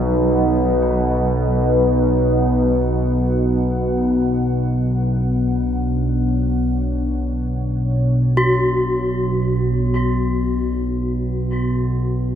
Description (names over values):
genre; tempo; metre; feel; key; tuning
dark ambient drone; free time; none; none; unclear; A4 = 442 Hz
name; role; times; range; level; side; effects
deep dark ambient pad; sustained chords; 0.0-12.4 s; D4 to F#5; -25 LUFS; left 1 dB; chorus, built-in reverb
gamelan-type bronze metallophone; arpeggios; 0.0-12.4 s; F#3 to F#4; -24 LUFS; left 1 dB; diffuse ambient delay
analog drone; drone; 0.0-12.4 s; B1 to B2; -18 LUFS; equal; chorus
bronze singing bowl; texture; 0.0-12.4 s; B4; -40 LUFS; equal; none
room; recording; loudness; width
wet cathedral reverb, RT60 5.9 s; none; -16 LUFS; side -9 dB against mid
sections
0.0-12.4 A section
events
fade-out on ambient pad 0.0-12.4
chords
0.0 B; 4.5 Dmaj7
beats
free time